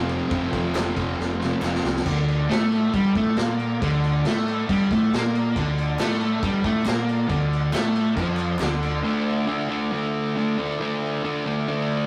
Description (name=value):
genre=garage rock duo or trio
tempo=138 BPM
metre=4/4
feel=straight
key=D minor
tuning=A4 = 440 Hz
part: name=combo organ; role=sustained chords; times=0.0-12.1 s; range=F4 to D5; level=-37 LUFS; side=equal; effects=none
part: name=fuzz guitar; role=riff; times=0.0-12.1 s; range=F2 to D4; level=-25 LUFS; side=equal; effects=distortion
part: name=fuzz fingered electric bass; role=bass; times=0.0-9.0 s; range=F1 to Bb2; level=-32 LUFS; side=equal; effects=overdrive, tube saturation
part: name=vintage drum kit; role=drums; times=0.1-8.9 s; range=crash cymbal, kick drum, ride cymbal, snare drum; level=-30 LUFS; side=equal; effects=none
part: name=group handclap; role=percussion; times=0.8-1.7, 6.0-8.7 s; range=none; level=-41 LUFS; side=equal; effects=none
room=moderate studio reverb, RT60 0.5 s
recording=rough rehearsal-room recording, warm saturation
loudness=-23 LUFS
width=mono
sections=0.0-2.1 A section; 2.1-9.0 B section; 9.0-12.1 C section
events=drum fill 1.2-2.1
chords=0.0 F; 2.1 Dm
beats=| 0.32 0.76 1.19 1.63 | 2.06 2.50 2.93 3.37 | 3.80 4.24 4.67 5.11 | 5.54 5.98 6.42 6.85 | 7.29 7.73 8.16 8.60 | 9.04 9.47 9.91 10.35 | 10.78 11.22 11.66